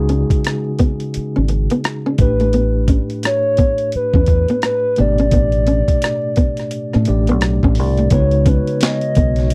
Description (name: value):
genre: R&B, neo-soul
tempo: 86 BPM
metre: 4/4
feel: swing 62% on 16ths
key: unclear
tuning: A4 = 440 Hz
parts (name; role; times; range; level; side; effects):
- tine electric piano; accompaniment; 0.0-9.5 s; A2 to D5; -24 LUFS; equal; none
- deep dub fingered electric bass; bass; 0.0-9.5 s; G#1 to A2; -19 LUFS; equal; none
- nylon-string guitar; second line; 0.1-9.3 s; A3 to C#4; -22 LUFS; equal; none
- boom bap sampler-style drum kit; drums; 0.1-9.5 s; hi-hat, kick drum, rim click, snare drum; -19 LUFS; equal; none
- hollow clarinet-like synth lead; melody; 2.2-9.5 s; B4 to D#5; -22 LUFS; equal; chorus, tape echo
- glass harmonica; sustained chords; 8.1-9.5 s; B3 to C#5; -29 LUFS; equal; none
room: little or no reverb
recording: dry, close 1970s-style studio recording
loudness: -16 LUFS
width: mono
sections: 0.0-8.1 A section; 8.1-9.5 B section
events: none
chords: 0.0 C#9sus4; 2.2 A9sus4; 8.1 C#9sus4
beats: 0.44 1.14 1.83 | 2.53 3.23 3.93 4.62 | 5.32 6.02 6.72 7.41 | 8.11 8.81 9.51